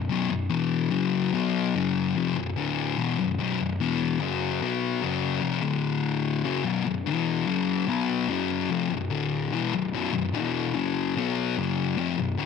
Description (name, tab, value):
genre	rock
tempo	147 BPM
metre	4/4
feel	straight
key	unclear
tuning	A4 = 439 Hz
part	thick fuzz guitar	solo	0.0-12.5 s	B1 to B3	-24 LUFS	left 6 dB	distortion
room	moderate spring reverb, RT60 1.3 s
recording	none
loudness	-24 LUFS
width	side -6 dB against mid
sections	0.0-12.5 A section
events	none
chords	0.0 B5; 0.5 E5; 0.9 F#5; 1.3 B5; 1.7 F#5; 2.2 B5; 2.6 D5; 3.0 B5; 3.8 E5; 4.2 F#5; 4.6 B5; 5.0 F#5; 5.4 F5; 5.6 D5; 6.5 B5; 7.1 E5; 7.5 F#5; 7.9 B5; 8.3 F#5; 8.7 B5; 9.1 D5; 9.5 B5; 10.3 E5; 10.7 F#5; 11.2 B5; 11.6 F#5; 12.0 B5